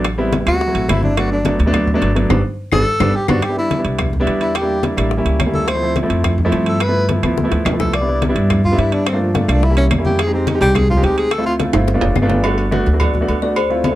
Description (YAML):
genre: Afro-Cuban jazz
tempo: 213 BPM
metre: 4/4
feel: straight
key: G major, C major from 3.4 s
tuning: A4 = 440 Hz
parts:
  - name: warm grand piano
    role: accompaniment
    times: 0.0-14.0 s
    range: F3 to G4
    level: -19 LUFS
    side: equal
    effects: none
  - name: upright bass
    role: bass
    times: 0.0-13.9 s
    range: F1 to G2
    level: -18 LUFS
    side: equal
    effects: none
  - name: bongos and cowbell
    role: percussion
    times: 0.0-14.0 s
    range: none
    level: -27 LUFS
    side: left 6 dB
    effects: none
  - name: claves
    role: percussion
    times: 0.0-13.7 s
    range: none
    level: -30 LUFS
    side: left 5 dB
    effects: none
  - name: congas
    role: percussion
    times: 0.0-14.0 s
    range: none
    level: -23 LUFS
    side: left 1 dB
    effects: none
  - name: timbales and agogo bells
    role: percussion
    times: 0.0-14.0 s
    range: none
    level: -25 LUFS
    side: right 6 dB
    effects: none
  - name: breathy tenor saxophone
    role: melody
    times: 0.5-11.5 s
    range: F3 to D5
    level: -19 LUFS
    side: equal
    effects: none
  - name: kalimba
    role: second line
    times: 13.0-14.0 s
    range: E4 to D5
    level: -20 LUFS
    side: left 4 dB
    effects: none
room: moderate club reverb, RT60 0.5 s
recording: dark, warm production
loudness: -14 LUFS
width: side -15 dB against mid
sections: 0.0-3.4 A section; 3.4-12.4 A section; 12.4-14.0 A section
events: tenor saxophone solo 0.0-12.4; band accent 2.3-3.4; drum fill 2.7-3.4, 7.1-7.9, 11.7-12.4; kalimba solo 12.4-14.0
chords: 0.0 Am7; 0.6 D7; 1.2 Gmaj9; 3.4 Cmaj7; 4.6 Em7b5; 5.1 A7b9; 5.7 Dm9; 6.8 G13; 7.9 Cmaj9; 9.1 Gm7; 9.6 C7b9; 10.2 Fm9; 11.3 Dm9; 11.9 G7; 12.4 Gmaj9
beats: | 0.05 0.33 0.61 0.89 | 1.17 1.46 1.74 2.02 | 2.30 2.58 2.86 3.14 | 3.42 3.71 3.99 4.27 | 4.55 4.83 5.12 5.40 | 5.68 5.96 6.24 6.53 | 6.81 7.09 7.37 7.65 | 7.94 8.22 8.50 8.78 | 9.06 9.35 9.63 9.91 | 10.19 10.47 10.75 11.04 | 11.32 11.60 11.88 12.16 | 12.44 12.72 13.00 13.28 | 13.56 13.85